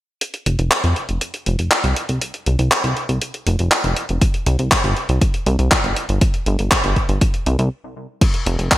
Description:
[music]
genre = italo disco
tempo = 120 BPM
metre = 4/4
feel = straight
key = unclear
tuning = A4 = 440 Hz
[part]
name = clean 12-bit digital drum machine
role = drums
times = 0.2-8.8 s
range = crash cymbal, handclaps, hi-hat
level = -19 LUFS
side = equal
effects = gated reverb
[part]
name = chorused synth bass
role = bass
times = 0.5-8.7 s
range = F1 to F2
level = -19 LUFS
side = equal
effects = none
[part]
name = electronic kick drum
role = drums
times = 4.2-8.8 s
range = none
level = -18 LUFS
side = equal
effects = none
[sound]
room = light reverb, digital ambience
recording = bright 1980s-style digital production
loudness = -16 LUFS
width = side -15 dB against mid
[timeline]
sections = 0.2-8.2 A section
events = filter sweep on analog synth bass 0.2-8.2; stop 7.7-8.2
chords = none

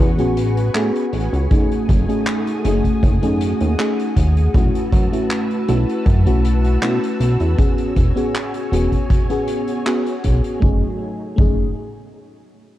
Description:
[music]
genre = vaporwave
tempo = 79 BPM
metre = 4/4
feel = straight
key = F# dorian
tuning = A4 = 440 Hz
[part]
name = FM electric piano with soft pad layer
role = accompaniment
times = 0.0-11.7 s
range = A3 to G#4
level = -21 LUFS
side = left 1 dB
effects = wide subtle chorus, tape echo
[part]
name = soft string machine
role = sustained chords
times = 0.0-11.0 s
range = F#3 to E6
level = -28 LUFS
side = equal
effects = ensemble chorus
[part]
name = chorused synth bass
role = bass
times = 0.0-11.7 s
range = E1 to B2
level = -18 LUFS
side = equal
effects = tube saturation
[part]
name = street-band drum kit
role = drums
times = 0.2-10.6 s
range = handclaps, hi-hat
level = -30 LUFS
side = equal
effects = none
[part]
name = kick drum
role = drums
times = 1.5-11.5 s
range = none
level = -18 LUFS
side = equal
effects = none
[sound]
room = studio ambience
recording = dark, warm production, cassette tape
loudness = -15 LUFS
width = side -14 dB against mid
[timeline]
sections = 0.0-10.6 A section; 10.6-12.8 B section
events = none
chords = 0.0 Amaj13; 1.5 F#m69; 4.5 B7sus4; 7.6 E69; 10.6 F#m69

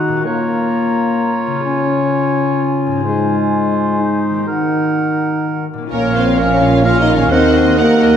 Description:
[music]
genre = cinematic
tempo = 128 BPM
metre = 3/4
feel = straight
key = Bb minor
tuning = A4 = 439 Hz
[part]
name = clear clarinet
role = second line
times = 0.0-8.2 s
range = Eb4 to Bb4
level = -22 LUFS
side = right 3 dB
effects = none
[part]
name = mellow concert flute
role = second line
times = 0.0-8.2 s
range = Db5 to Bb5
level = -23 LUFS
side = equal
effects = none
[part]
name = warm oboe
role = second line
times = 0.0-8.2 s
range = Bb4 to Gb5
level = -22 LUFS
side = right 2 dB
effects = none
[part]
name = mellow French horn section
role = sustained chords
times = 0.0-8.2 s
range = Eb3 to F4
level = -17 LUFS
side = left 2 dB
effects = none
[part]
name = concert harp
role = arpeggios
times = 0.0-8.2 s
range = Ab2 to Bb4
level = -22 LUFS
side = left 3 dB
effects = none
[part]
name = rich symphonic violin section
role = melody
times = 5.9-8.2 s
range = Db5 to Gb5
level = -24 LUFS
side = left 1 dB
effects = none
[part]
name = clear symphonic violin section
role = second line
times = 5.9-8.2 s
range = Bb4 to F5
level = -25 LUFS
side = equal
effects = none
[part]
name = rich symphonic viola section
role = accompaniment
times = 5.9-8.2 s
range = Db4 to Db5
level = -22 LUFS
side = right 3 dB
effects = none
[part]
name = rich symphonic cello section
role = bass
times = 5.9-8.2 s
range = Eb2 to Bb2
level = -19 LUFS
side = right 4 dB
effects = none
[part]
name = rich symphonic double bass section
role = bass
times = 5.9-8.2 s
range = Bb1 to Eb2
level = -19 LUFS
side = right 5 dB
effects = none
[sound]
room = wet scoring stage reverb, RT60 1.4 s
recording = none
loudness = -13 LUFS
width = side -8 dB against mid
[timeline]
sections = 0.0-5.9 A section; 5.9-8.2 B section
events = build-up 0.0-5.9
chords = 0.3 Bbm; 1.7 Db; 3.1 Ab; 4.5 Ebm; 5.9 Bbm; 7.3 Ebm

